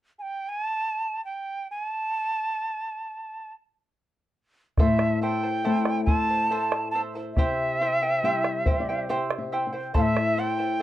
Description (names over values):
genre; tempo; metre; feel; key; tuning
andean folk, Andean ensemble; 70 BPM; 3/4; straight; A minor pentatonic; A4 = 440 Hz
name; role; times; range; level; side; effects
bright quena; melody; 0.2-10.8 s; E5 to A5; -26 LUFS; right 1 dB; none
charango; accompaniment; 4.8-10.8 s; E4 to A5; -30 LUFS; right 2 dB; none
flamenco guitar; accompaniment; 4.8-10.8 s; A2 to G5; -28 LUFS; left 3 dB; none
bombo; percussion; 4.8-10.4 s; none; -24 LUFS; equal; none
room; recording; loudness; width
wet studio ambience, RT60 0.5 s; dark, warm production; -23 LUFS; side -13 dB against mid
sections
0.0-4.8 A section; 4.8-10.8 B section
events
nylon-string guitar fill 8.2-10.0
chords
0.0 N.C.; 4.8 Am; 7.4 C; 10.0 Am